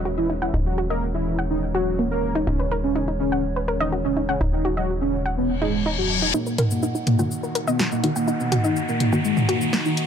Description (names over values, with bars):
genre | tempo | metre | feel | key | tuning
melodic techno | 124 BPM | 4/4 | straight | Eb phrygian | A4 = 441 Hz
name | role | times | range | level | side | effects
fat analog lead | melody | 0.0-10.1 s | Gb3 to Bb4 | -25 LUFS | equal | analog chorus, dub echo
dark analog pad | sustained chords | 0.0-10.1 s | Fb3 to Gb5 | -30 LUFS | right 1 dB | wide subtle chorus
tight sequencer bass | bass | 0.0-6.3 s | Eb1 | -27 LUFS | equal | tube saturation
soft round pluck | arpeggios | 0.1-9.8 s | Bb3 to Gb5 | -28 LUFS | equal | chorus, tape echo
reverse cymbal and riser | sound effects | 5.6-10.1 s | none | -28 LUFS | left 4 dB | none
swarming drone | drone | 7.4-10.1 s | Eb3 | -30 LUFS | equal | built-in reverb
house drum kit | drums | 6.3-10.1 s | hi-hat, shaker, snare drum, toms | -24 LUFS | right 1 dB | none
filtered dub chord stab | stabs | 7.2-9.2 s | Eb3 to Gb4 | -29 LUFS | left 1 dB | none
room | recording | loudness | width
light reverb | dark, warm production, high-pass filter | -20 LUFS | side -8 dB against mid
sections
0.0-6.3 A section; 6.3-10.1 B section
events
filter sweep on synth arpeggio sound 0.0-6.3; reverse cymbal 5.6-6.3; build-up 6.3-10.1; riser 6.3-10.1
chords
0.0 Dbm/Eb; 6.3 Ebm